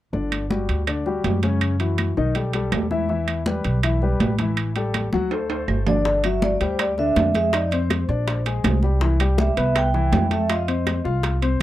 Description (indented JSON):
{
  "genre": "Afro-Cuban jazz",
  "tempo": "162 BPM",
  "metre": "4/4",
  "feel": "straight",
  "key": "G major",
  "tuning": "A4 = 441 Hz",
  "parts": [
    { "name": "warm baby grand piano", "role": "accompaniment", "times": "0.1-11.6 s", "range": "C#3 to F#5", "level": "-25 LUFS", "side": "left 4 dB", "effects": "none" },
    { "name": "upright bass", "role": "bass", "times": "0.1-11.6 s", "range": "G1 to F#2", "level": "-23 LUFS", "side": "equal", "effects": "none" },
    { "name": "congas", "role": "percussion", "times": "0.1-11.6 s", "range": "none", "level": "-28 LUFS", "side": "left 1 dB", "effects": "none" },
    { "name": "claves", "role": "percussion", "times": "0.3-11.1 s", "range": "none", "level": "-31 LUFS", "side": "right 10 dB", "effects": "none" },
    { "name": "timbales", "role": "percussion", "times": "0.3-11.6 s", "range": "none", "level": "-28 LUFS", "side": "right 7 dB", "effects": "none" },
    { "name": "vibraphone with soft mallets", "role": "melody", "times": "5.9-11.0 s", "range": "C5 to G5", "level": "-24 LUFS", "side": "right 2 dB", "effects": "slapback echo" },
    { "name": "bongos", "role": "percussion", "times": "6.1-11.6 s", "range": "none", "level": "-30 LUFS", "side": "left 4 dB", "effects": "none" }
  ],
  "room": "light reverb",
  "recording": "dry, close 1970s-style studio recording",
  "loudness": "-19 LUFS",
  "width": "side -14 dB against mid",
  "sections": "0.1-6.1 A section; 6.1-11.6 B section",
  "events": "drum fill 5.1-6.1",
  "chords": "0.1 G5; 1.6 F#5; 2.4 Emadd11/B; 3.1 Emadd11; 4.6 A5; 5.3 D5; 6.1 G5; 7.5 F5; 8.3 Bb9; 9.0 Cmaj7; 10.5 F7(no3)",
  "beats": "| 0.13 0.50 0.87 1.24 | 1.61 1.98 2.35 2.72 | 3.09 3.46 3.83 4.20 | 4.58 4.95 5.32 5.68 | 6.05 6.42 6.79 7.17 | 7.54 7.91 8.28 8.65 | 9.02 9.39 9.76 10.13 | 10.50 10.87 11.24 11.61"
}